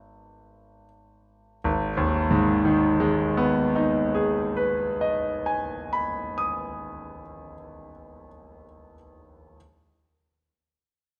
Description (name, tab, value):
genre	classical, romantic nocturne for solo piano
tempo	36-44 BPM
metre	4/4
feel	rubato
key	G# minor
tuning	A4 = 440 Hz
part	clear concert grand piano	solo	0.0-9.6 s	G#1 to D#6	-25 LUFS	equal	none
room	moderate recital hall reverb, RT60 1.6 s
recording	none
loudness	-24 LUFS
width	mono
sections	0.0-1.7 A section; 1.7-7.5 B section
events	slowing down 0.0-1.7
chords	0.0 G#m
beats	0.06 | 1.65 3.12 4.59 6.10